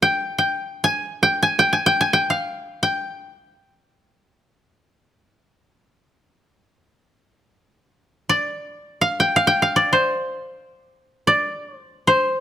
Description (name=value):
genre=japanese traditional, Japanese chamber music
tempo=free time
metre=none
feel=none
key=G in sen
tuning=A4 = 440 Hz
part: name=koto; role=solo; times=0.0-12.4 s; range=C5 to Ab5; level=-17 LUFS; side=equal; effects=none
room=light reverb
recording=close, detailed microphones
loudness=-18 LUFS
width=side -10 dB against mid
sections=0.0-12.4 A section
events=none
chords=none